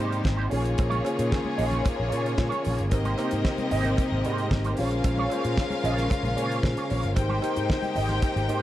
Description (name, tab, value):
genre	disco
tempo	113 BPM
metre	4/4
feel	straight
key	Bb dorian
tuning	A4 = 441 Hz
part	warm studio violin section	second line	0.0-8.6 s	G3 to G5	-30 LUFS	left 3 dB	none
part	electric guitar with an envelope filter	accompaniment	0.0-8.6 s	Bb3 to Eb5	-33 LUFS	right 6 dB	wah
part	mellow tine electric piano	accompaniment	0.0-8.6 s	Bb3 to C5	-31 LUFS	left 1 dB	none
part	clear studio string section	sustained chords	0.0-8.6 s	C3 to G4	-35 LUFS	equal	none
part	picked electric bass with an envelope filter	bass	0.0-8.6 s	G1 to Bb2	-28 LUFS	equal	none
part	damped 70s drum kit	drums	0.1-8.6 s	hi-hat, kick drum, snare drum	-28 LUFS	equal	none
part	congas	percussion	0.2-8.5 s	none	-39 LUFS	left 2 dB	none
part	cowbell	percussion	0.3-8.3 s	none	-43 LUFS	right 12 dB	none
room	light reverb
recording	dark, warm production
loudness	-23 LUFS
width	side -13 dB against mid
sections	0.0-8.6 A section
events	none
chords	0.0 Abmaj9; 0.5 Bbm7; 2.9 Abmaj9; 4.8 Bbm7; 7.2 Abmaj9